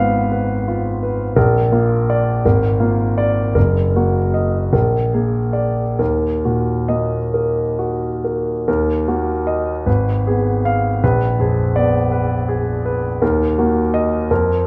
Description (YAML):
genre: classical, romantic character piece for solo piano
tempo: 44-58 BPM (dotted quarters)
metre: 6/8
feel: rubato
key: Eb minor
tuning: A4 = 440 Hz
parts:
  - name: warm grand piano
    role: solo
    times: 0.0-14.7 s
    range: Gb1 to F5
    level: -18 LUFS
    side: equal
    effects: none
room: wet recital hall reverb, RT60 1.5 s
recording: dark, warm production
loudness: -18 LUFS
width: mono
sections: 0.0-8.7 A section; 8.7-14.7 A section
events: none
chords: 0.0 Fdim/Ab; 1.4 Bb; 2.4 Bb7/Ab; 3.6 Ebm/Gb; 4.7 Bb7; 6.0 Ebm; 9.9 Fdim/Ab; 11.0 Bb7b9; 13.2 Ebm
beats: 0.32 | 1.36 2.44 | 3.55 4.73 | 6.00 7.34 | 8.68 9.86 | 11.02 12.11 | 13.21 14.30